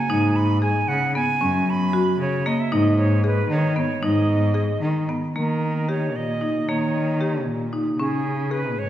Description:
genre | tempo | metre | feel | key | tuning
contemporary instrumental, chamber music in an uneven meter | 229 BPM (eighths) | 5/8 | straight | G# minor | A4 = 440 Hz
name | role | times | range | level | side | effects
bright concert flute | melody | 0.0-8.9 s | G#4 to B5 | -26 LUFS | right 3 dB | none
marimba with hard mallets | arpeggios | 0.1-8.8 s | A#3 to G#4 | -24 LUFS | left 1 dB | none
warm cello | bass | 0.1-8.9 s | F#2 to D#3 | -23 LUFS | equal | none
room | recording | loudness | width
wet recital hall reverb, RT60 1.9 s | heard from further back in the room | -19 LUFS | side -12 dB against mid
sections
0.0-5.4 A section; 5.4-8.9 B section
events
none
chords
0.1 G#5; 1.4 F#5; 2.7 G#5; 5.4 D#; 8.0 C#5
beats
| 0.10 0.36 0.63 0.89 1.15 | 1.42 1.68 1.94 2.20 2.46 | 2.72 2.98 3.24 3.50 3.76 | 4.03 4.29 4.55 4.82 5.09 | 5.36 5.62 5.89 6.15 6.42 | 6.68 6.95 7.21 7.47 7.73 | 7.99 8.25 8.51 8.78

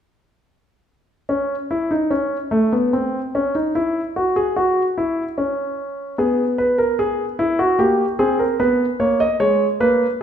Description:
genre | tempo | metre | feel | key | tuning
classical, baroque-style 3-part fugue for grand piano | 74 BPM | 3/4 | straight | unclear | A4 = 440 Hz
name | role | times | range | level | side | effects
warm concert grand piano | solo | 1.3-10.1 s | G#3 to D#5 | -17 LUFS | equal | none
room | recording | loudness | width
wet recital hall reverb, RT60 1.3 s | recorded in a church or concert hall | -17 LUFS | side -8 dB against mid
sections
1.3-10.2 A section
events
none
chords
1.3 N.C.; 6.2 G#m/B; 7.8 G#maj9/A#; 8.6 G#m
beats
| 1.28 2.11 2.93 | 3.74 4.56 5.37 | 6.18 6.99 7.79 | 8.60 9.40

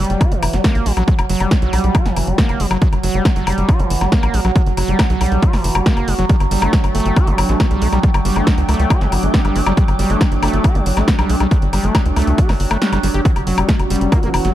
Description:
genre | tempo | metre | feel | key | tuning
psychedelic trance | 138 BPM | 4/4 | straight | unclear | A4 = 440 Hz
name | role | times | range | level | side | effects
overtone-sweeping drone | sustained chords | 0.0-14.5 s | F#3 | -24 LUFS | right 3 dB | chorus, built-in reverb, sidechain pumping
overdriven acid bass | riff | 0.0-14.5 s | E3 to G4 | -22 LUFS | equal | distortion, auto-pan, sidechain pumping, digital delay
tight sequencer bass | bass | 0.0-14.5 s | F#1 to C#2 | -18 LUFS | equal | none
techno drum kit | drums | 0.0-14.5 s | hi-hat, snare drum, woodblock | -22 LUFS | left 2 dB | overdrive
electronic kick drum | drums | 0.2-14.2 s | none | -15 LUFS | equal | overdrive
airy breathy pad | texture | 6.3-14.5 s | C#4 to D6 | -24 LUFS | right 1 dB | chorus, sidechain pumping
zap | sound effects | 9.4-9.6 s | none | -38 LUFS | equal | none
metallic wobble bass | second line | 14.1-14.3 s | A#3 | -30 LUFS | right 3 dB | none
room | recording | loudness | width
little or no reverb | none | -13 LUFS | side -13 dB against mid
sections
0.0-14.5 A section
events
kick drops out 12.8-13.3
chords
0.0 F#7b9; 6.3 G5; 13.3 F#5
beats
0.21 0.64 | 1.08 1.51 1.95 2.38 | 2.82 3.25 3.69 4.12 | 4.56 4.99 5.43 5.86 | 6.29 6.73 7.17 7.60 | 8.03 8.47 8.90 9.34 | 9.77 10.21 10.64 11.08 | 11.51 11.95 12.38 12.82 | 13.25 13.69 14.12

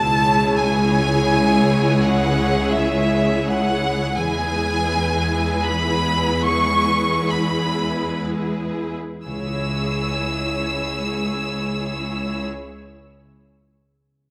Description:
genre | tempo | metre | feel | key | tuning
cinematic, emotional film score for orchestra | 56-86 BPM | 3/4 | rubato | C# minor | A4 = 440 Hz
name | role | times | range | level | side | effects
rich studio violin section | melody | 0.0-12.4 s | E5 to E6 | -25 LUFS | equal | none
rich studio violin section | second line | 0.0-12.5 s | G#4 to C#5 | -31 LUFS | equal | none
rich symphonic viola section | accompaniment | 0.0-12.5 s | G#3 to E4 | -26 LUFS | equal | none
concert harp | arpeggios | 0.0-13.2 s | C#3 to E5 | -31 LUFS | equal | none
rich symphonic cello section | bass | 0.0-12.5 s | C#2 to E2 | -26 LUFS | equal | none
room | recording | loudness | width
moderate scoring stage reverb, RT60 1.8 s | none | -20 LUFS | mono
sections
0.0-9.3 A section; 9.3-14.3 B section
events
slowing down 3.1-9.3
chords
0.0 C#m; 4.2 E; 9.3 C#m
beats
0.60 1.33 | 2.05 2.75 3.46 | 4.17 4.90 5.65 | 6.45 7.31 8.23 | 9.26 10.28 11.28 | 12.27

